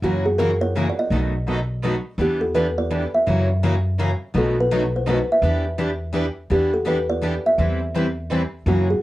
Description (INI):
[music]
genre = acoustic string swing (jazz manouche)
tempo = 167 BPM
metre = 3/4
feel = swing 61% on 8ths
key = E minor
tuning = A4 = 439 Hz
[part]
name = kalimba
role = melody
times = 0.0-9.0 s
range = F#4 to E5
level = -22 LUFS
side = right 1 dB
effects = none
[part]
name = picked steel-string acoustic guitar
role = accompaniment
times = 0.0-8.9 s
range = B2 to B4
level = -24 LUFS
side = left 1 dB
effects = none
[part]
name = picked swing-style acoustic guitar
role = accompaniment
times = 0.0-8.9 s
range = B2 to B4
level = -29 LUFS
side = right 3 dB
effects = none
[part]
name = upright bass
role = bass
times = 0.0-8.9 s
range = B1 to F#2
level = -23 LUFS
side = equal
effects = none
[sound]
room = light reverb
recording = worn, warbling old tape, cassette tape, warbly pitch drift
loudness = -19 LUFS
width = side -16 dB against mid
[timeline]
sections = 0.0-6.5 A section; 6.5-9.0 A section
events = none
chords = 0.0 F#7; 1.1 B7; 2.2 Em7; 3.3 F#7; 4.3 B7; 5.4 Em7; 7.6 Cmaj7/E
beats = | 0.03 0.39 0.75 | 1.11 1.47 1.83 | 2.19 2.55 2.91 | 3.27 3.63 3.99 | 4.34 4.71 5.06 | 5.42 5.78 6.14 | 6.50 6.86 7.22 | 7.58 7.94 8.30 | 8.65 9.01